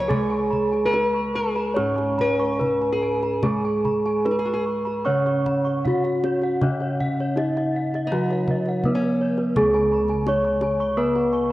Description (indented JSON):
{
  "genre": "Javanese gamelan",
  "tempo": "72-85 BPM",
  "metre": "4/4",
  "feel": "straight",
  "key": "Db slendro",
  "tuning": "A4 = 440 Hz",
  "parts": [
    { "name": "gamelan-type bronze metallophone", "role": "melody", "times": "0.0-11.5 s", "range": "Cb4-45c to Db5", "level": "-23 LUFS", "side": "right 1 dB", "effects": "none" },
    { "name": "nylon-string guitar", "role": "second line", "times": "0.0-9.4 s", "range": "Db4 to Db5", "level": "-28 LUFS", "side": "left 2 dB", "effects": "cassette tape" },
    { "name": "gamelan-type bronze metallophone", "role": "accompaniment", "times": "0.0-11.5 s", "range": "Db3 to Db4", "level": "-27 LUFS", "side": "equal", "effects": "cassette tape" },
    { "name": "gamelan-type bronze metallophone", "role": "arpeggios", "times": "0.0-11.5 s", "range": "Cb5-45c to Db6", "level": "-32 LUFS", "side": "right 2 dB", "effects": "cassette tape" },
    { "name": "gamelan-type bossed gongs", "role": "bass", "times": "0.0-11.5 s", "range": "Db2 to Ab4+25c", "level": "-29 LUFS", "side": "equal", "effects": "none" },
    { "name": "gamelan-type bossed gongs", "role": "arpeggios", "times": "0.1-11.5 s", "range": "Cb5-45c to Db6", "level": "-34 LUFS", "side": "left 2 dB", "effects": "cassette tape" },
    { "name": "kendang", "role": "percussion", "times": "0.1-11.2 s", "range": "none", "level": "-28 LUFS", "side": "left 1 dB", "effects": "none" }
  ],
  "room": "moderate lush hall reverb, RT60 2.8 s",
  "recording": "home recording on cassette",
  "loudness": "-20 LUFS",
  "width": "side -16 dB against mid",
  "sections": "0.0-9.6 A section; 9.6-11.5 B section",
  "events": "none",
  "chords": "none"
}